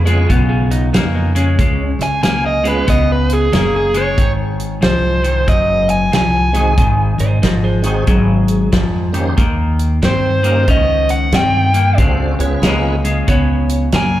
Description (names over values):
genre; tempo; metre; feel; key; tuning
electric blues shuffle; 92 BPM; 4/4; swing 64% on 8ths; Ab mixolydian; A4 = 441 Hz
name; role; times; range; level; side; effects
electric slide guitar; second line; 0.0-1.9, 7.2-13.7 s; Cb4 to Eb5; -25 LUFS; right 2 dB; none
upright bass; bass; 0.0-14.2 s; Gb1 to G2; -16 LUFS; equal; none
tonewheel organ; accompaniment; 0.1-13.0 s; Ab3 to C5; -24 LUFS; right 3 dB; slow rotary speaker, overdrive, chorus vibrato, slapback echo
clean electric guitar; riff; 0.1-14.2 s; Ab2 to Db4; -19 LUFS; left 2 dB; slapback echo
natural country drum kit; drums; 0.1-14.1 s; hi-hat, kick drum, snare drum; -18 LUFS; equal; none
overdriven electric guitar; melody; 2.0-14.2 s; Ab4 to Ab5; -17 LUFS; right 1 dB; slapback echo
room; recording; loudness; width
light reverb, small room ambience; live gig heard through the venue's PA, club reverb; -12 LUFS; side -13 dB against mid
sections
0.0-14.2 A section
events
none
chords
0.0 Db7; 4.2 Ab7; 9.4 Eb7; 12.0 Db7